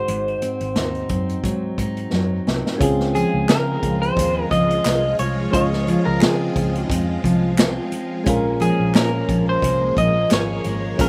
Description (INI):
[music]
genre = indie pop, bedroom pop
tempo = 88 BPM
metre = 4/4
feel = swing 55% on 16ths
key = Db major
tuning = A4 = 440 Hz
[part]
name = electric guitar through a small old amp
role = melody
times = 0.0-11.1 s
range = Ab4 to Eb5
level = -25 LUFS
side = equal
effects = slapback echo
[part]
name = picked steel-string acoustic guitar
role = accompaniment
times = 0.0-11.1 s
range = Ab2 to Eb4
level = -26 LUFS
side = equal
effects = warbly pitch drift, slapback echo
[part]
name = soft electric-piano-like synth keys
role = accompaniment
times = 0.0-11.1 s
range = Ab3 to Eb5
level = -29 LUFS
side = equal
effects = chorus, slapback echo
[part]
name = vintage muted fingered electric bass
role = bass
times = 0.1-11.1 s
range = Ab1 to Db3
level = -27 LUFS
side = equal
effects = none
[part]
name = unplugged drum kit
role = drums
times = 0.1-11.1 s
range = hi-hat, kick drum, snare drum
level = -24 LUFS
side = equal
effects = none
[part]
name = string machine, violins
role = sustained chords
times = 2.8-11.1 s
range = F3 to F4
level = -31 LUFS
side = equal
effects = ensemble chorus
[part]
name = group handclap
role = percussion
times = 3.5-10.5 s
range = none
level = -32 LUFS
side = equal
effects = none
[sound]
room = little or no reverb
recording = none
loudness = -20 LUFS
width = mono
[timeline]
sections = 0.0-2.8 A section; 2.8-11.1 B section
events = drum fill 2.1-2.8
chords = 0.0 Ab7; 2.8 Dbmaj7; 8.3 Bbm7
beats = | 0.08 0.76 1.44 2.12 | 2.81 3.49 4.17 4.85 | 5.54 6.22 6.90 7.58 | 8.26 8.95 9.63 10.31 | 10.99